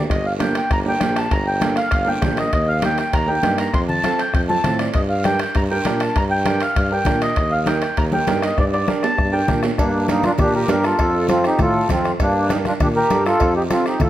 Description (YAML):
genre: latin, cumbia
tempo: 198 BPM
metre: 4/4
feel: straight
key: G minor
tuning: A4 = 440 Hz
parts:
  - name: mellow accordion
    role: melody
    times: 0.0-14.1 s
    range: Bb3 to C6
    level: -20 LUFS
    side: equal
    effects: none
  - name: clear tuba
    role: bass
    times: 0.0-14.1 s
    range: G1 to Bb2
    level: -23 LUFS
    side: equal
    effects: none
  - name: bombo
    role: percussion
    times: 0.1-14.1 s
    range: none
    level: -23 LUFS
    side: left 1 dB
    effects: none
  - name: guiro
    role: percussion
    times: 0.1-14.1 s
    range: none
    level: -35 LUFS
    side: right 4 dB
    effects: none
  - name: timbales and cowbell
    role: percussion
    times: 0.1-14.1 s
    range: none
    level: -31 LUFS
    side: right 5 dB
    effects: none
  - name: clear upright piano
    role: accompaniment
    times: 0.4-13.9 s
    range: Bb3 to Bb4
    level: -25 LUFS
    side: right 3 dB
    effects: none
  - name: congas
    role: percussion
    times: 0.4-14.1 s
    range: none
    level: -26 LUFS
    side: left 2 dB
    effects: none
room: moderate large studio reverb, RT60 1.2 s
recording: none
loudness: -16 LUFS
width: side -13 dB against mid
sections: 0.1-9.8 A section; 9.8-14.1 B section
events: drum fill 8.6-9.8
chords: 0.1 Gm; 2.5 Eb; 3.7 F; 5.0 Gm; 7.4 Eb; 8.6 Gm; 11.0 F; 12.2 Gm; 13.4 F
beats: | 0.11 0.41 0.71 1.02 | 1.32 1.62 1.93 2.23 | 2.53 2.83 3.14 3.44 | 3.74 4.04 4.35 4.65 | 4.95 5.25 5.56 5.86 | 6.16 6.46 6.77 7.07 | 7.37 7.67 7.98 8.28 | 8.58 8.88 9.18 9.49 | 9.79 10.09 10.39 10.69 | 10.99 11.29 11.60 11.90 | 12.20 12.50 12.80 13.10 | 13.40 13.71 14.01